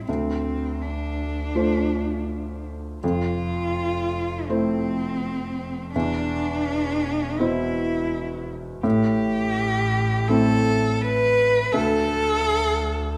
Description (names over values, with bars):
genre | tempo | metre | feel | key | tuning
neoclassical piano and strings | 82 BPM | 4/4 | rubato | unclear | A4 = 440 Hz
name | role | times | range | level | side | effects
warm cello | second line | 0.0-13.2 s | C4 to B4 | -27 LUFS | equal | none
felt-muted upright piano | accompaniment | 0.0-13.2 s | D2 to C5 | -27 LUFS | equal | none
rich double bass | bass | 0.0-13.2 s | E1 to D2 | -32 LUFS | equal | none
room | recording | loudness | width
moderate recital hall reverb, RT60 1.5 s | none | -23 LUFS | mono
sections
0.0-13.2 A section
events
none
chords
0.1 Dm7; 3.0 Fmaj7; 5.9 Cmaj7/E; 8.8 Am7; 11.7 D5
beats
| 0.08 0.81 1.55 2.29 | 3.02 3.76 4.48 5.22 | 5.94 6.67 7.39 8.12 | 8.85 9.57 10.30 11.02 | 11.75 12.47